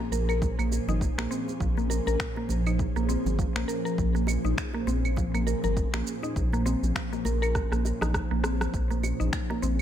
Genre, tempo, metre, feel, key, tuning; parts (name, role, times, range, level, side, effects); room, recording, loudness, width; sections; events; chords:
organic downtempo; 101 BPM; 4/4; swing 58% on 16ths; Bb minor; A4 = 437 Hz
ethereal airy pad; sustained chords; 0.0-9.8 s; Bb2 to C5; -34 LUFS; equal; ensemble chorus, built-in reverb, phaser, sidechain pumping
mallet-like synth pluck; arpeggios; 0.0-9.8 s; F3 to Bb4; -31 LUFS; equal; chorus, tape echo
bongos and congas; percussion; 0.0-9.8 s; -40 LUFS; right 4 dB
round analog bass; bass; 0.1-9.8 s; Ab1 to Bb1; -28 LUFS; equal; sidechain pumping
electronic shaker, claves, finger snaps and rim click; drums; 0.1-9.8 s; -35 LUFS; right 1 dB; overdrive
electronic kick drum; drums; 0.4-9.5 s; -31 LUFS; equal; overdrive
digital ambience; -25 LUFS; side -10 dB against mid
0.0-9.8 A section
drum fill 7.5-8.7
0.0 Bbm7